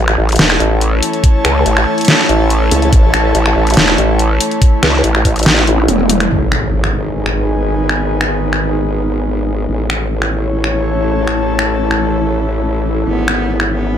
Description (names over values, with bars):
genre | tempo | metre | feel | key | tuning
heavy wobble dubstep | 142 BPM | 4/4 | half-time | unclear | A4 = 438 Hz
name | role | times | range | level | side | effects
evolving wavetable pad | sustained chords | 0.0-14.0 s | D#3 to A4 | -21 LUFS | left 1 dB | chorus, built-in reverb, sidechain pumping
vowel-sweep wobble bass | bass | 0.0-5.9 s | A1 to C#2 | -13 LUFS | equal | chorus, overdrive
airy breathy pad | texture | 0.0-14.0 s | D#4 to A5 | -19 LUFS | equal | chorus, sidechain pumping
dubstep drum kit | drums | 0.1-13.7 s | finger snaps, hi-hat, snare drum, toms | -14 LUFS | equal | none
formant-sweep wobble bass | bass | 0.4-14.0 s | E1 to C#2 | -17 LUFS | equal | chorus, overdrive
electronic kick drum | drums | 1.2-5.3 s | none | -10 LUFS | equal | none
impact | sound effects | 6.3-8.0 s | none | -22 LUFS | equal | none
warm cello | melody | 13.1-14.0 s | B3 | -21 LUFS | left 1 dB | dub echo
room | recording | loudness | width
light reverb, digital ambience | none | -11 LUFS | side -9 dB against mid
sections
0.0-6.3 A section; 6.3-14.0 B section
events
drop 0.0-6.3; drum fill 5.7-6.3; impact 6.3-8.0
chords
0.0 A; 6.3 G#m; 9.7 A; 13.1 E/G#